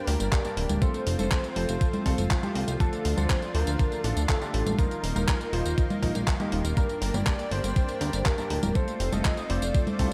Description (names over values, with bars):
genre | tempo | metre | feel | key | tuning
italo disco | 121 BPM | 4/4 | straight | G minor | A4 = 440 Hz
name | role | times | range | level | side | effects
unison lead | melody | 0.0-10.1 s | F4 to Eb5 | -36 LUFS | equal | tape echo
lush unison pad | sustained chords | 0.0-10.1 s | F3 to G4 | -38 LUFS | equal | chorus
direct-recorded clean electric guitar | arpeggios | 0.0-10.1 s | F3 to Eb4 | -43 LUFS | equal | none
clear baby grand piano | stabs | 0.0-10.1 s | G2 to A5 | -38 LUFS | equal | none
chorused synth bass | bass | 0.1-10.1 s | D1 to D2 | -31 LUFS | equal | none
clean 12-bit digital drum machine | drums | 0.1-10.1 s | congas, handclaps, hi-hat, tambourine | -34 LUFS | equal | overdrive, studio reverb, gated reverb
electronic kick drum | drums | 0.3-10.1 s | none | -28 LUFS | equal | overdrive, studio reverb
room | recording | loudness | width
little or no reverb | none | -27 LUFS | mono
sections
0.0-10.1 A section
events
none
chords
0.0 Gm; 0.8 F; 2.8 Dm; 4.8 Ebsus2; 6.8 Gm; 8.8 F